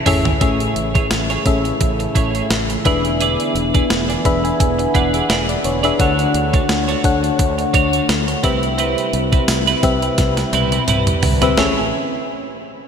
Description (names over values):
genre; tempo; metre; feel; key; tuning
1980s-style pop; 86 BPM; 4/4; swing 55% on 16ths; A major; A4 = 438 Hz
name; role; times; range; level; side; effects
FM electric piano; accompaniment; 0.0-11.9 s; A1 to B5; -19 LUFS; left 3 dB; chorus, shimmer reverb
sweeping resonant pad; sustained chords; 0.0-11.9 s; C3 to G#5; -25 LUFS; right 2 dB; lush chorus, shimmer reverb
twelve-string electric guitar; riff; 0.1-11.8 s; C4 to D5; -22 LUFS; right 5 dB; analog chorus, shimmer reverb, ping-pong delay
fretless electric bass; bass; 0.1-11.9 s; E1 to D2; -23 LUFS; equal; none
clean 12-bit digital drum machine; drums; 0.1-11.8 s; hi-hat, kick drum, snare drum, tambourine, toms; -19 LUFS; equal; gated reverb
room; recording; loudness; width
wet lush hall reverb, RT60 3.1 s; bright 1980s-style digital production; -14 LUFS; side -7 dB against mid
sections
0.4-11.6 A section; 11.6-12.9 B section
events
drum fill 0.0-0.4, 10.2-11.6; FM electric piano fill 3.9-6.0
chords
0.4 Amaj7; 2.9 E7; 6.0 Dmaj7; 8.4 Cmaj7; 11.6 Amaj7